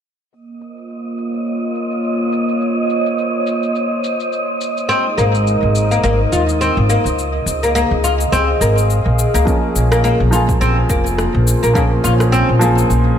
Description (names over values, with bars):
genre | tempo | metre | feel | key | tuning
organic downtempo | 105 BPM | 4/4 | swing 56% on 16ths | Bb minor | A4 = 442 Hz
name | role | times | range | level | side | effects
warm analog pad | sustained chords | 0.3-13.2 s | Ab3 to F5 | -21 LUFS | left 1 dB | chorus, sidechain pumping
electronic cabasa and rim click | drums | 0.3-13.0 s | none | -26 LUFS | left 3 dB | overdrive, low-pass filter on perc, studio reverb, low-pass filter on snare
wind-like tuned noise texture | texture | 1.1-9.5 s | Eb5 | -23 LUFS | right 4 dB | built-in reverb
oud | arpeggios | 4.9-12.8 s | Bb3 to F4 | -18 LUFS | left 2 dB | tape echo
upright bass | bass | 5.2-13.1 s | F1 to Eb2 | -16 LUFS | equal | sidechain pumping
felt-muted upright piano | accompaniment | 9.4-13.2 s | F3 to Ab4 | -19 LUFS | right 2 dB | vintage 12-bit sampler grit, sidechain pumping, low-pass filter, tape echo
electronic kick drum | drums | 9.5-11.9 s | none | -18 LUFS | equal | studio reverb
room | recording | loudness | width
light reverb, studio reverb | none | -13 LUFS | side -9 dB against mid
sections
0.3-9.5 A section; 9.5-13.2 B section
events
filter sweep on drum 0.3-9.5; filter sweep on felt piano 9.5-13.2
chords
0.3 Bbm; 4.9 Ab; 9.5 Bbm7